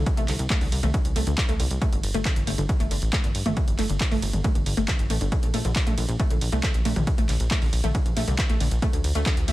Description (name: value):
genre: uplifting trance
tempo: 137 BPM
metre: 4/4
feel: straight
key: unclear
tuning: A4 = 440 Hz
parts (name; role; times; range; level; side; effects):
- wide unison pluck; arpeggios; 0.0-9.5 s; D3 to A3; -30 LUFS; left 1 dB; wide subtle chorus, sidechain pumping, diffuse ambient delay
- plucky analog bass; bass; 0.0-9.5 s; G1 to D2; -25 LUFS; equal; tube saturation, sidechain pumping
- electronic kick drum; drums; 0.1-9.3 s; none; -24 LUFS; equal; overdrive
- punchy analog drum machine; drums; 0.1-9.5 s; handclaps, hi-hat, ride cymbal, toms; -30 LUFS; equal; none
room: little or no reverb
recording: none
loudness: -21 LUFS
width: side -16 dB against mid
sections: 0.0-9.5 A section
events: none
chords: 0.0 Amadd11/C; 1.8 G5; 5.3 Bb; 8.8 D5